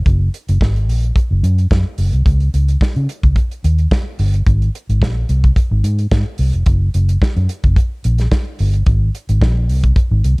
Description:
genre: disco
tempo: 109 BPM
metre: 4/4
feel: straight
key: unclear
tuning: A4 = 440 Hz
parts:
  - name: vintage muted fingered electric bass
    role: bass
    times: 0.1-10.4 s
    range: E#1 to C#3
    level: -14 LUFS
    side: equal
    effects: none
  - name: damped 70s drum kit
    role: drums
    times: 0.1-10.4 s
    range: hi-hat, kick drum, snare drum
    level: -16 LUFS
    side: equal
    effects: none
room: little or no reverb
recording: dark, warm production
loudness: -13 LUFS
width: side -30 dB against mid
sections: 0.0-2.3 A section; 2.3-10.4 B section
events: none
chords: none

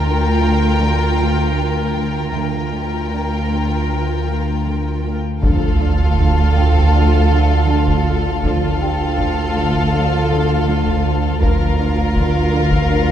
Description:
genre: cinematic, suspense film score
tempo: 80 BPM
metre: 4/4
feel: straight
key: D minor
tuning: A4 = 442 Hz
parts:
  - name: dark studio violin section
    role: melody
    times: 0.0-13.1 s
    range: F5 to G5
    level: -26 LUFS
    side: left 4 dB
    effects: none
  - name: warm studio violin section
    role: second line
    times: 0.0-13.1 s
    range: A4 to Bb4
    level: -24 LUFS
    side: left 2 dB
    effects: none
  - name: warm studio viola section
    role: accompaniment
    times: 0.0-13.1 s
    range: F4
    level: -25 LUFS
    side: right 2 dB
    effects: none
  - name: warm studio cello section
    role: riff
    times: 0.0-13.1 s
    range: D3 to D4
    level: -24 LUFS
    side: equal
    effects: none
  - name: warm studio cello section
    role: bass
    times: 0.0-13.1 s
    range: D2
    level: -23 LUFS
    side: equal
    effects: none
  - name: analog drone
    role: drone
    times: 0.0-13.1 s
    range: D2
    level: -19 LUFS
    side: right 1 dB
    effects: chorus, phaser
  - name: dark symphonic double bass section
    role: bass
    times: 2.3-13.1 s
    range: D2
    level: -22 LUFS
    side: right 3 dB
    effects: none
  - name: small celesta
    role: texture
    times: 2.3-11.4 s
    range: G4 to A5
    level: -31 LUFS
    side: left 2 dB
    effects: none
  - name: dark French horn section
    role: sustained chords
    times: 5.4-13.1 s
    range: F3 to Bb4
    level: -29 LUFS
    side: left 4 dB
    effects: none
  - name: taiko ensemble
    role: drums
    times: 5.4-13.1 s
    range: none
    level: -23 LUFS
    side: equal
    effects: none
  - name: sub drop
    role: sound effects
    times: 5.5-8.4 s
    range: none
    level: -24 LUFS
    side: equal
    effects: none
room: wet concert hall reverb, RT60 2.5 s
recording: heard from further back in the room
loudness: -14 LUFS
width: side -10 dB against mid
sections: 0.0-5.4 A section; 5.4-13.1 B section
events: impact 5.4-8.4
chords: 0.0 Gm7/D; 5.4 Dm; 11.4 Bb/D

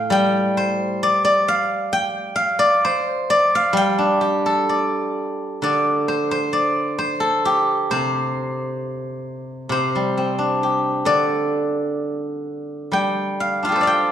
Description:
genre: chinese traditional, Chinese solo plucked strings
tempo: 65 BPM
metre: 2/4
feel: rubato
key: G shang mode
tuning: A4 = 440 Hz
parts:
  - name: steel-string zither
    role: solo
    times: 0.0-14.1 s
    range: A2 to G5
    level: -18 LUFS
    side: equal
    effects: none
room: wet recital hall reverb, RT60 1.5 s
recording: recorded in a church or concert hall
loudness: -18 LUFS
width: side -10 dB against mid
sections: 0.0-5.6 A section; 5.6-14.1 B section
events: none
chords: none

